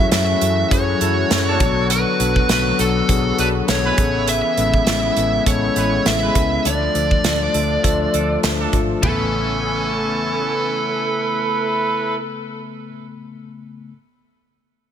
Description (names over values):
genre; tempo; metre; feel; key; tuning
1980s-style pop; 101 BPM; 4/4; swing 55% on 16ths; A major; A4 = 440 Hz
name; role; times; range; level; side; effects
fuzz lead guitar; melody; 0.0-12.2 s; A4 to E5; -21 LUFS; right 1 dB; distortion
bell-like tine electric piano; accompaniment; 0.0-13.9 s; C#3 to G#5; -23 LUFS; left 7 dB; none
brassy analog pad; sustained chords; 0.0-12.2 s; C#3 to G#5; -28 LUFS; right 3 dB; chorus
vintage muted fingered electric bass; bass; 0.0-12.9 s; G#1 to F#2; -24 LUFS; right 1 dB; none
modern studio drum kit; drums; 0.1-9.2 s; hi-hat, kick drum, ride cymbal, snare drum, toms; -20 LUFS; right 1 dB; gated reverb
warm horn section; stabs; 1.0-12.2 s; F3 to B4; -26 LUFS; right 5 dB; ping-pong delay
room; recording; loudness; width
light reverb, small room ambience; none; -16 LUFS; side -9 dB against mid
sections
0.0-9.0 A section; 9.0-11.4 B section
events
none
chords
0.0 F#m7; 1.6 Bm7; 4.0 Amaj9; 6.7 Dm; 9.0 Amaj9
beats
0.12 0.71 1.30 | 1.90 2.49 3.09 3.68 | 4.28 4.87 5.46 6.06 | 6.65 7.25 7.84 8.43 | 9.03 9.62 10.22 10.81